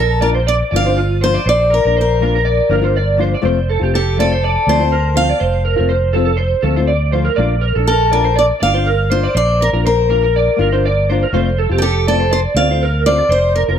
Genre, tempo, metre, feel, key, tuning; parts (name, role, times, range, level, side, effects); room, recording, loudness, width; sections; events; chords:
highlife; 122 BPM; 4/4; swing 54% on 16ths; Bb major; A4 = 440 Hz
picked steel-string acoustic guitar; melody; 0.0-13.6 s; G4 to F5; -16 LUFS; left 1 dB
electric guitar through a small old amp; arpeggios; 0.0-13.8 s; F4 to D5; -18 LUFS; right 5 dB; ensemble chorus
fingered electric bass; bass; 0.0-13.8 s; F1 to D2; -17 LUFS; equal
nylon-string guitar; accompaniment; 0.2-13.8 s; F3 to F4; -21 LUFS; left 9 dB
moderate spring reverb, RT60 1.1 s, studio reverb; -12 LUFS; side -8 dB against mid
0.0-13.8 A section
0.0 Bb; 3.4 F; 7.4 Bb; 11.3 F